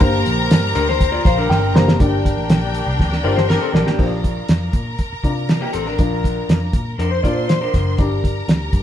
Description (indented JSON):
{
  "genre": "uptempo 1960s-style soul",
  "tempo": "120 BPM",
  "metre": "4/4",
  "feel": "straight",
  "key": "Bb major",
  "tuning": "A4 = 440 Hz",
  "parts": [
    { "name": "rich studio string section", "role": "second line", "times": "0.0-8.8 s", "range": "D4 to C6", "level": "-25 LUFS", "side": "equal", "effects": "none" },
    { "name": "warm horn section", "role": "second line", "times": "0.0-4.0 s", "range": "G3 to Bb4", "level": "-28 LUFS", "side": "equal", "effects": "none" },
    { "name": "dark upright piano", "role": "accompaniment", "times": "0.0-8.8 s", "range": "Bb3 to Bb5", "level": "-23 LUFS", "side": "left 1 dB", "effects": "none" },
    { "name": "mellow tonewheel organ", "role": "sustained chords", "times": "0.0-4.0 s", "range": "D3 to G4", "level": "-32 LUFS", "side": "equal", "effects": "none" },
    { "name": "vintage muted picked electric bass", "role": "bass", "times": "0.0-8.8 s", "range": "Gb1 to C3", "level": "-22 LUFS", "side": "equal", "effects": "none" },
    { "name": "cloth-damped thuddy drum kit", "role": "drums", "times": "0.0-8.8 s", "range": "crash cymbal, hi-hat, kick drum, snare drum", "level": "-17 LUFS", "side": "equal", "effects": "none" },
    { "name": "electric guitar through a small old amp", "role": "riff", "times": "0.8-8.0 s", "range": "Bb3 to D5", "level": "-22 LUFS", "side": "left 4 dB", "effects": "none" }
  ],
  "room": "moderate stone room reverb, RT60 1.0 s",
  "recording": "band playing live in one room",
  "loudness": "-15 LUFS",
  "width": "side -10 dB against mid",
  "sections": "0.0-2.0 A section; 2.0-4.0 B section; 4.0-8.8 C section",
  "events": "upright piano fill 1.0-2.0; drum fill 1.5-2.0, 3.0-4.0",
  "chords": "0.0 Gm; 4.0 Bb; 8.0 Gm",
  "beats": "| 0.01 0.51 1.00 1.50 | 2.00 2.49 2.99 3.49 | 3.99 4.49 4.99 5.49 | 5.99 6.49 6.99 7.49 | 7.99 8.48"
}